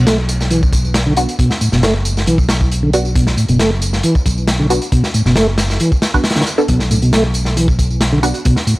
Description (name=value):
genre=breakbeat, breaks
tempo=136 BPM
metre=4/4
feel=straight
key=B minor pentatonic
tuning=A4 = 440 Hz
part: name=tonewheel organ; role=riff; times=0.0-8.7 s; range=A2 to A3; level=-16 LUFS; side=equal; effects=chorus vibrato, slow rotary speaker, tube saturation, vintage 12-bit sampler grit, tape echo
part: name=fingered electric bass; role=bass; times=0.0-8.3 s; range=F#1 to B1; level=-17 LUFS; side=equal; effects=none
part: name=crunchy breakbeat drum kit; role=drums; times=0.1-8.8 s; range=hi-hat, kick drum, snare drum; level=-17 LUFS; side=equal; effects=none
part: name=tambourine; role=drums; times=0.1-8.8 s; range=none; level=-26 LUFS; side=right 2 dB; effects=none
part: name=filtered dub chord stab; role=stabs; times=1.2-8.4 s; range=B3 to A4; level=-19 LUFS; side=right 1 dB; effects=phaser, tape echo
room=small room ambience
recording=dry, gritty hardware recording, vinyl crackle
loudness=-12 LUFS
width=side -20 dB against mid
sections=0.0-8.8 A section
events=none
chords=0.0 Bm